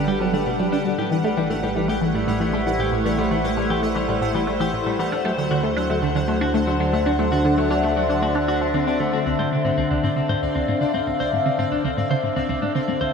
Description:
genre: ambient, sequencer-driven space music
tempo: 116 BPM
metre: 4/4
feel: straight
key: D minor from 9.3 s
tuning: A4 = 440 Hz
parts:
  - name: evolving wavetable pad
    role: sustained chords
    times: 0.0-13.1 s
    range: D3 to F#5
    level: -23 LUFS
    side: left 1 dB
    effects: chorus, built-in reverb, phaser
  - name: clean electric guitar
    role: arpeggios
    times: 0.0-13.1 s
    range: F#3 to C5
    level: -27 LUFS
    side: left 2 dB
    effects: auto-pan, ping-pong delay
  - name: resonant blip pluck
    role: riff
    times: 0.0-13.1 s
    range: D2 to D4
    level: -24 LUFS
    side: equal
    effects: chorus, phaser, ping-pong delay
  - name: round analog bass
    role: bass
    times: 0.0-9.2 s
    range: G1 to D2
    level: -30 LUFS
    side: equal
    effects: none
  - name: pulsing gated texture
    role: texture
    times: 0.0-13.1 s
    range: D5 to F#5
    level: -32 LUFS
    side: left 1 dB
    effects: chorus, built-in reverb
room: wet huge ambient reverb, RT60 9.1 s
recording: dreamy mix soaked in reverb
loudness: -19 LUFS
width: side -6 dB against mid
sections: 0.0-9.3 A section; 9.3-13.1 B section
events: filter sweep on synth arpeggio sound 9.3-13.1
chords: 0.0 Gadd9; 1.0 Am7; 5.1 D7; 9.3 Dm7

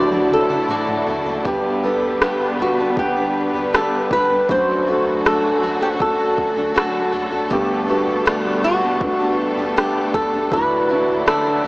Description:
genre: pop ballad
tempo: 79 BPM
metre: 4/4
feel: straight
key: G major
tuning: A4 = 440 Hz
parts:
  - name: flamenco guitar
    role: melody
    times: 0.0-11.7 s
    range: F#4 to D5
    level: -20 LUFS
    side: equal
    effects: analog chorus
  - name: felt-muted upright piano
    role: accompaniment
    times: 0.0-11.7 s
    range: D2 to F#5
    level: -22 LUFS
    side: equal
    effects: lush chorus
  - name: clear studio string section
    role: sustained chords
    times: 0.0-11.7 s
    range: F#2 to B4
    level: -24 LUFS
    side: equal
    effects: none
  - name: picked steel-string acoustic guitar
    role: arpeggios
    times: 0.0-11.7 s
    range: G2 to D5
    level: -25 LUFS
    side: left 1 dB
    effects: analog delay
  - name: smooth R&B drum kit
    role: drums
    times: 0.1-11.7 s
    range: kick drum, rim click, toms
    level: -24 LUFS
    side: equal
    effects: none
room: wet huge ambient reverb, RT60 5.1 s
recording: dreamy mix soaked in reverb, small speaker sound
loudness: -16 LUFS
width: side -23 dB against mid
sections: 0.0-11.7 A section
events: drum fill 0.0-1.5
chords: 0.0 Dadd9; 1.5 G; 4.5 D/F#; 7.5 Gadd9; 10.5 Dadd9

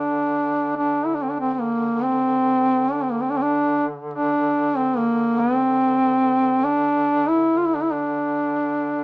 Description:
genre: caucasian folk, Caucasian lament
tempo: 71 BPM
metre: 4/4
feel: rubato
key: unclear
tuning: A4 = 439 Hz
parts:
  - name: mellow duduk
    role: melody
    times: 0.0-9.0 s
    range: Bb3 to F4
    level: -18 LUFS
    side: equal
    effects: none
  - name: mellow duduk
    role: drone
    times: 0.0-9.0 s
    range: D3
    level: -32 LUFS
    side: equal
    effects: none
room: light reverb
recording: band playing live in one room, small speaker sound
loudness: -18 LUFS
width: side -27 dB against mid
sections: 0.0-9.0 A section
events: none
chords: none

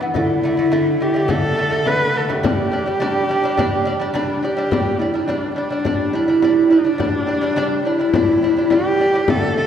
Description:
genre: mongolian traditional, Mongolian folk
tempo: 105 BPM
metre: 4/4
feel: straight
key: unclear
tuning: A4 = 440 Hz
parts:
  - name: lute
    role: arpeggios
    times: 0.0-9.7 s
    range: D3 to D4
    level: -22 LUFS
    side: equal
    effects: none
  - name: frame drum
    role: percussion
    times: 0.0-9.6 s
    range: none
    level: -24 LUFS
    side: left 3 dB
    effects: none
  - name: rich horsehead fiddle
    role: melody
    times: 0.2-9.7 s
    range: D4 to B4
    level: -17 LUFS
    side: equal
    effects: none
room: wet concert hall reverb, RT60 2.0 s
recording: heard from further back in the room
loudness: -15 LUFS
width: side -8 dB against mid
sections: 0.0-4.7 A section; 4.7-9.7 B section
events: none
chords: 0.2 D5; 2.4 G5

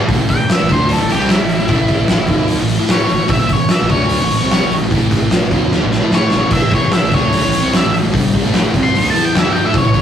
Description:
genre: garage rock duo or trio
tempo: 149 BPM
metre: 4/4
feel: straight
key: unclear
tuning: A4 = 441 Hz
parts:
  - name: thick fuzz guitar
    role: riff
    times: 0.0-10.0 s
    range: G2 to A4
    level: -16 LUFS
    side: right 1 dB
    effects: distortion
  - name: modern bright picked electric bass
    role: bass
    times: 0.1-10.0 s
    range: G1 to A2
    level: -24 LUFS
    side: equal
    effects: overdrive
  - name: oversized low-tuned drum kit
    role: drums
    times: 0.1-10.0 s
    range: crash cymbal, hi-hat, kick drum, snare drum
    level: -15 LUFS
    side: equal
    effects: none
  - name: octave-fuzz lead guitar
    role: melody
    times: 0.3-10.0 s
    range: E4 to C6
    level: -18 LUFS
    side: equal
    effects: distortion
room: moderate small room reverb, RT60 0.5 s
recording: rough rehearsal-room recording, warm saturation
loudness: -12 LUFS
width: side -9 dB against mid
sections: 0.1-10.0 A section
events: lead electric guitar solo 0.1-10.0; drum fill 5.7-6.5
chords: 0.1 A

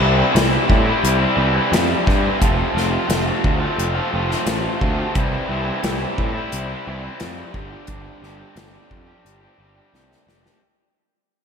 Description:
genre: classic rock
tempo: 88 BPM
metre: 4/4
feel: straight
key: unclear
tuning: A4 = 440 Hz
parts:
  - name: raw garage guitar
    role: riff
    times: 0.0-10.6 s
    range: F2 to G4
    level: -21 LUFS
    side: left 1 dB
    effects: overdrive, slapback echo
  - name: fuzz picked electric bass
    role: bass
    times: 0.0-10.5 s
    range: F1 to A2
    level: -23 LUFS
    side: equal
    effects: overdrive
  - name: big rock drum kit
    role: drums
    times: 0.4-10.6 s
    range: hi-hat, kick drum, snare drum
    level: -22 LUFS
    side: equal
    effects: none
room: moderate lush hall reverb, RT60 2.3 s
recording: big arena sound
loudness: -17 LUFS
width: side -6 dB against mid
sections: 0.0-10.6 A section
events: fade-out 0.0-10.6; drum fill 9.9-10.6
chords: 0.0 C; 2.4 F; 5.1 C; 7.5 Gsus4

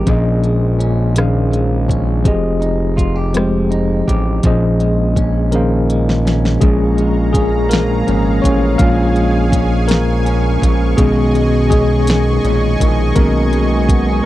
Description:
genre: slow six-eight R&B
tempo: 55 BPM (dotted quarters)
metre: 6/8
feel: straight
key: Bb dorian, Bb phrygian from 6.6 s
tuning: A4 = 440 Hz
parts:
  - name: electric guitar at the edge of break-up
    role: second line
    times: 0.0-14.3 s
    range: Bb2 to G4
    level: -21 LUFS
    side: right 4 dB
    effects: none
  - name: tine electric piano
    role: accompaniment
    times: 0.0-14.3 s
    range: Bb2 to F5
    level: -16 LUFS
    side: left 2 dB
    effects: fast stereo tremolo
  - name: fat analog bass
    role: bass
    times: 0.0-14.2 s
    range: F1 to B1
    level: -17 LUFS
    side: equal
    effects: none
  - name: smooth R&B drum kit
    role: drums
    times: 0.1-14.1 s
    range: hi-hat, kick drum, rim click, snare drum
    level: -16 LUFS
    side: equal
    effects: none
  - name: lush unison pad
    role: sustained chords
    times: 6.6-14.3 s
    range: Ab4 to Db6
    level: -23 LUFS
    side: right 1 dB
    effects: chorus
room: little or no reverb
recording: dry, close 1970s-style studio recording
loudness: -12 LUFS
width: side -15 dB against mid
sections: 0.0-6.6 A section; 6.6-14.3 B section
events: drum fill 5.5-6.6; tine electric piano solo 6.6-14.3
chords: 0.1 Bbm11; 2.3 Fm9; 4.4 Bbm11; 6.6 Bbm7; 11.0 B69

